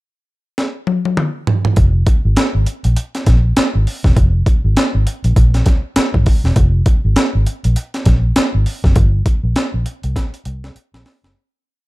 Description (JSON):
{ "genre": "funk", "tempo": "100 BPM", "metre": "4/4", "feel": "swing 60% on 16ths", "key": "unclear", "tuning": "A4 = 442 Hz", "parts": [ { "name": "breakbeat sampler-style drum kit", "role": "drums", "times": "0.6-11.3 s", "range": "hi-hat, kick drum, snare drum, toms", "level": "-14 LUFS", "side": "equal", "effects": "overdrive" }, { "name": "vintage muted fingered electric bass", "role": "bass", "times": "1.8-11.3 s", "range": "E1 to C2", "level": "-14 LUFS", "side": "equal", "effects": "none" } ], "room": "digital ambience", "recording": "dark, warm production", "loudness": "-13 LUFS", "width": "side -20 dB against mid", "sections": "0.0-1.8 pickup bar; 1.8-11.3 groove", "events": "drum fill 0.6-1.8, 10.2-11.3; fade-out 9.0-11.3", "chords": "none", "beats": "0.58 1.18 | 1.77 2.37 2.97 3.57 | 4.17 4.77 5.37 5.96 | 6.56 7.16 7.76 8.36 | 8.96 9.56 10.15 10.75" }